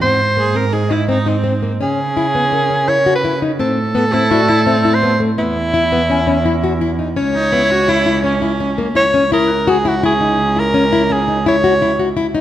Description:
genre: contemporary instrumental, chamber music in an uneven meter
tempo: 168 BPM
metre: 5/4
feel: straight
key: unclear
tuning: A4 = 442 Hz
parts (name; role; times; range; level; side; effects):
- breathy soprano saxophone; melody; 0.0-12.1 s; E4 to C#5; -16 LUFS; right 1 dB; none
- nylon-string guitar; arpeggios; 0.0-12.4 s; A3 to F#4; -18 LUFS; left 4 dB; none
- warm cello; bass; 0.0-12.4 s; C#2 to C#3; -19 LUFS; right 3 dB; none
- worn celesta; texture; 0.0-11.0 s; A#4 to F#6; -27 LUFS; left 5 dB; none
- clear viola; second line; 0.4-8.9 s; C4 to A#4; -21 LUFS; right 2 dB; none
room: moderate concert hall reverb, RT60 2.1 s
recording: none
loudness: -13 LUFS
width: side -12 dB against mid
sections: 0.0-9.0 A section; 9.0-12.4 B section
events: none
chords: 0.0 G#; 1.8 C#m; 3.6 Am; 5.4 E; 7.2 C#m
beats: | 0.02 0.38 0.74 1.09 1.45 | 1.81 2.17 2.52 2.88 3.24 | 3.60 3.96 4.31 4.67 5.03 | 5.39 5.75 6.10 6.46 6.82 | 7.18 7.53 7.89 8.25 8.61 | 8.96 9.32 9.68 10.04 10.39 | 10.75 11.11 11.46 11.82 12.18

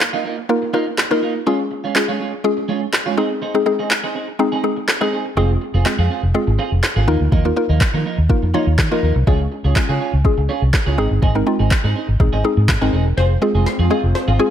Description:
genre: dance-pop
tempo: 123 BPM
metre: 4/4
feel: straight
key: Ab major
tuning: A4 = 442 Hz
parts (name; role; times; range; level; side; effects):
- mallet-like synth pluck; accompaniment; 0.0-14.5 s; Ab3 to Db5; -20 LUFS; left 2 dB; chorus, phaser, sidechain pumping
- twelve-string electric guitar; riff; 0.0-14.4 s; F3 to Ab4; -24 LUFS; right 6 dB; lush chorus
- smooth R&B drum kit; drums; 0.0-14.3 s; handclaps, kick drum, snare drum; -18 LUFS; equal; none
- downlifter; sound effects; 0.2-1.5 s; none; -44 LUFS; right 2 dB; none
- vintage muted fingered electric bass; bass; 5.4-14.4 s; Fb1 to Eb3; -16 LUFS; equal; sidechain pumping
- airy breathy pad; sustained chords; 13.4-14.5 s; Ab3 to F4; -26 LUFS; left 1 dB; chorus, phaser, sidechain pumping
- analog pluck; arpeggios; 13.2-14.5 s; C5 to C7; -25 LUFS; left 6 dB; chorus, phaser, sidechain pumping, digital delay
room: light reverb, digital ambience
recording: none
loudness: -15 LUFS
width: side -10 dB against mid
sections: 0.0-13.2 A section; 13.2-14.5 B section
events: build-up 13.2-14.5; drum fill 13.2-14.5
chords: 0.0 Ebsus2; 1.5 Db; 3.2 Ab; 5.4 Fm; 7.1 Ebsus2; 9.3 Db; 11.0 Ab; 13.2 Fm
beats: 0.01 0.49 0.98 | 1.47 1.96 2.44 2.93 | 3.42 3.91 4.40 4.88 | 5.37 5.86 6.35 6.83 | 7.32 7.81 8.30 8.79 | 9.27 9.76 10.25 10.74 | 11.22 11.71 12.20 12.69 | 13.18 13.66 14.15

